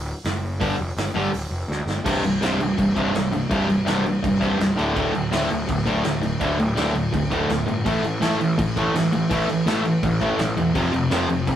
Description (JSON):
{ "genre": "punk rock", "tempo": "166 BPM", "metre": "4/4", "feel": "straight", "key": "C major", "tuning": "A4 = 440 Hz", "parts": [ { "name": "fuzz picked electric bass", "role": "bass", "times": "0.0-11.6 s", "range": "C1 to D2", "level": "-27 LUFS", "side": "equal", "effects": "overdrive" }, { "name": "big rock drum kit", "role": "drums", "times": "0.2-11.6 s", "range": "crash cymbal, hi-hat, kick drum, snare drum", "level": "-28 LUFS", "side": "equal", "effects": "none" }, { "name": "distorted electric guitar", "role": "riff", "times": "0.6-11.6 s", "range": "C2 to A3", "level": "-21 LUFS", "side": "equal", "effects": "distortion" } ], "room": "moderate studio reverb, RT60 0.6 s", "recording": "rough rehearsal-room recording, tube saturation", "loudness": "-19 LUFS", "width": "side -10 dB against mid", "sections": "0.0-2.1 A section; 2.1-11.6 B section", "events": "drum fill 1.7-2.1", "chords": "0.0 N.C.; 0.6 G5; 2.1 C5; 4.8 D5; 7.9 A5; 10.8 F5" }